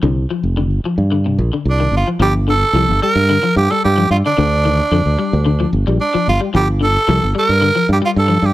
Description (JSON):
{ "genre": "afrobeat", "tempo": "111 BPM", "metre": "4/4", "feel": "straight", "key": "G minor", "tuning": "A4 = 440 Hz", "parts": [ { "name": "electric guitar at the edge of break-up", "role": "arpeggios", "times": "0.0-8.4 s", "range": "C3 to G3", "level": "-20 LUFS", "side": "left 5 dB", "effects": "ensemble chorus" }, { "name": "fingered electric bass", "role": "bass", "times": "0.0-8.5 s", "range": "F1 to G2", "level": "-15 LUFS", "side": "equal", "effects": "none" }, { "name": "growling tenor saxophone", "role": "melody", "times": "1.7-8.5 s", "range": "D4 to Bb4", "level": "-16 LUFS", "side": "right 2 dB", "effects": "none" } ], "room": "studio reverb", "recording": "dry, close 1970s-style studio recording", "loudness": "-13 LUFS", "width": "side -16 dB against mid", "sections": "0.0-2.2 A section; 2.2-8.5 B section", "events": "none", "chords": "0.0 G7(no3)" }